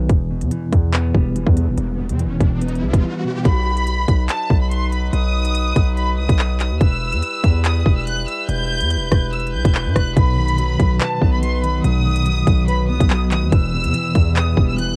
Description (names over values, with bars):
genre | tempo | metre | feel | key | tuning
hip hop, drill | 143 BPM | 4/4 | half-time | E harmonic minor | A4 = 444 Hz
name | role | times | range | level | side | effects
mellow electric guitar | accompaniment | 0.0-3.5, 10.2-15.0 s | E2 to B4 | -24 LUFS | equal | harmonic tremolo, cassette tape
hard-hitting 808-style bass | bass | 0.0-15.0 s | D#1 to G2 | -22 LUFS | equal | none
drill drum kit | drums | 0.1-14.9 s | handclaps, hi-hat, kick drum, rim click | -19 LUFS | equal | none
riser | sound effects | 1.4-3.5 s | none | -34 LUFS | equal | none
rich studio violin section | melody | 3.5-15.0 s | A5 to G6 | -27 LUFS | equal | cassette tape, analog delay
warm brass ensemble | sustained chords | 3.5-15.0 s | F#3 to B4 | -33 LUFS | equal | cassette tape
room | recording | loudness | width
little or no reverb | home recording on cassette | -18 LUFS | mono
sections
0.0-3.5 A section; 3.5-15.0 B section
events
riser 1.4-3.5; break 3.0-3.5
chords
0.1 Em; 3.5 B; 6.8 Em; 10.2 B; 13.5 Em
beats
| 0.10 0.52 0.94 1.35 | 1.77 2.19 2.61 3.03 | 3.45 3.87 4.29 4.71 | 5.13 5.55 5.97 6.39 | 6.81 7.23 7.65 8.07 | 8.49 8.91 9.33 9.75 | 10.16 10.59 11.01 11.42 | 11.84 12.26 12.68 13.10 | 13.52 13.94 14.36 14.78